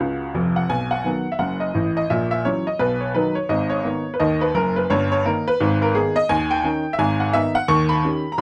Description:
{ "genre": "jazz, stride piano", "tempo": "172 BPM", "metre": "4/4", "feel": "swing 61% on 8ths", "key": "B major", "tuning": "A4 = 440 Hz", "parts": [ { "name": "clear upright piano", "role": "solo", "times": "0.0-8.4 s", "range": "E#1 to C#6", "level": "-21 LUFS", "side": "equal", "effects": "none" } ], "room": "light reverb", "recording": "none", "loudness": "-21 LUFS", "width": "mono", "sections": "0.7-8.4 A section", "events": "none", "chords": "0.0 F#5; 0.7 B; 2.1 F#7/A#; 2.8 B; 3.5 G#m; 4.9 D#/G; 5.6 G#m; 6.3 D#7; 7.0 G#m; 7.7 D#7", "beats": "0.00 0.35 | 0.70 1.05 1.40 1.75 | 2.10 2.45 2.80 3.15 | 3.50 3.84 4.19 4.54 | 4.89 5.24 5.59 5.94 | 6.29 6.63 6.98 7.33 | 7.68 8.03 8.38" }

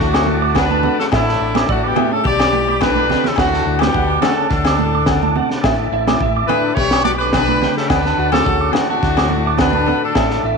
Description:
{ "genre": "highlife guitar band", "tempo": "106 BPM", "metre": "4/4", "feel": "straight", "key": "D major", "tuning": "A4 = 443 Hz", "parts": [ { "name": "bright horn section", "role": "melody", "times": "0.0-10.4 s", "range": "A3 to D5", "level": "-19 LUFS", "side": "left 1 dB", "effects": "none" }, { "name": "breathy trombone", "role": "second line", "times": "0.0-10.4 s", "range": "A2 to G3", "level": "-25 LUFS", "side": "left 10 dB", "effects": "none" }, { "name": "flamenco guitar", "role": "accompaniment", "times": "0.0-10.6 s", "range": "A2 to B4", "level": "-26 LUFS", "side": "left 11 dB", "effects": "none" }, { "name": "tonewheel organ", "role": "sustained chords", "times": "0.0-10.6 s", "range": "E5 to D6", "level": "-28 LUFS", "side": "equal", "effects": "slow rotary speaker, chorus vibrato" }, { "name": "fingered electric bass", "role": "bass", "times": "0.0-10.6 s", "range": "A1 to D2", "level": "-22 LUFS", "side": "equal", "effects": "none" }, { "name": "crunchy breakbeat drum kit", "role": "drums", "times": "0.0-10.4 s", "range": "kick drum, snare drum", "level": "-21 LUFS", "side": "equal", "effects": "none" }, { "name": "clean electric guitar", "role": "arpeggios", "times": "0.1-10.6 s", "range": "D5 to D6", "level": "-22 LUFS", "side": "right 10 dB", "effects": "none" }, { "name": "agogo bells", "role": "percussion", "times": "0.1-10.3 s", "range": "none", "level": "-25 LUFS", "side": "left 12 dB", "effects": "none" }, { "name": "congas", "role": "percussion", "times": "0.3-10.0 s", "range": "none", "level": "-24 LUFS", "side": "right 14 dB", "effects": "none" } ], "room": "moderate echo chamber reverb, RT60 2.1 s", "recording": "1960s-style stereo with parts hard left and right", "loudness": "-13 LUFS", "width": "side -4 dB against mid", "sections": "0.0-10.6 A section", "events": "drum fill 2.7-3.4", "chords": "0.0 D; 1.1 Asus4; 2.3 G/B; 3.4 D; 5.6 Asus4; 6.8 G/B; 7.9 D", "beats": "0.00 0.56 | 1.13 1.69 2.26 2.82 | 3.38 3.95 4.51 5.08 | 5.64 6.20 6.77 7.33 | 7.89 8.46 9.02 9.59 | 10.15" }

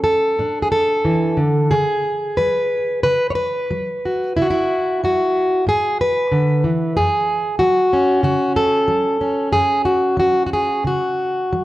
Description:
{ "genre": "folk, solo fingerstyle acoustic guitar", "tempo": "91 BPM", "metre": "4/4", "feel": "rubato", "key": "F# minor", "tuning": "A4 = 440 Hz", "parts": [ { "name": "fingerpicked plugged-in steel-string acoustic guitar", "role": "solo", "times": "0.0-11.6 s", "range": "F#2 to C#5", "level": "-16 LUFS", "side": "equal", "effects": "none" } ], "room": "light reverb", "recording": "worn, warbling old tape, cassette tape, warbly pitch drift, nothing above 10.9 kHz", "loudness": "-16 LUFS", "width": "side -16 dB against mid", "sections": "0.0-11.6 A section", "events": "none", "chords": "0.0 Dmaj7; 1.7 C#7sus4; 7.0 F#5", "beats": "0.38 1.04 | 1.71 2.38 3.04 3.70 | 4.36 5.01 5.67 6.32 | 6.96 7.60 8.24 8.89 | 9.54 10.19 10.85 11.53" }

